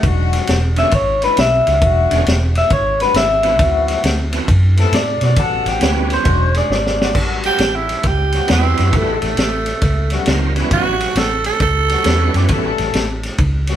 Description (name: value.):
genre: electric blues shuffle.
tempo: 135 BPM.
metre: 4/4.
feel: swing 65% on 8ths.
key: A mixolydian.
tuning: A4 = 440 Hz.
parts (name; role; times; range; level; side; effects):
electric guitar through a small old amp; melody; 0.0-7.2 s; G4 to E5; -16 LUFS; left 1 dB; none.
warm horn section; stabs; 0.0-13.8 s; E3 to F#5; -24 LUFS; left 7 dB; none.
vintage muted fingered electric bass; bass; 0.0-13.7 s; E1 to B2; -18 LUFS; equal; none.
vintage drum kit; drums; 0.0-13.7 s; crash cymbal, kick drum, ride cymbal, snare drum; -19 LUFS; equal; none.
bright tonewheel organ; accompaniment; 0.8-12.7 s; D3 to B4; -23 LUFS; right 6 dB; slow rotary speaker, chorus vibrato.
growling tenor saxophone; second line; 7.5-12.5 s; A3 to A4; -18 LUFS; right 5 dB; none.
room: moderate stone room reverb, RT60 1.2 s.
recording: band playing live in one room.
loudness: -13 LUFS.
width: side -11 dB against mid.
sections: 0.0-7.2 A section; 7.2-13.8 A section.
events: clean electric guitar solo 0.0-7.2; drum fill 6.7-7.2; tenor saxophone solo 7.2-13.8.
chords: 0.0 E13; 3.6 D13; 5.4 A13; 6.3 E13; 7.2 A13.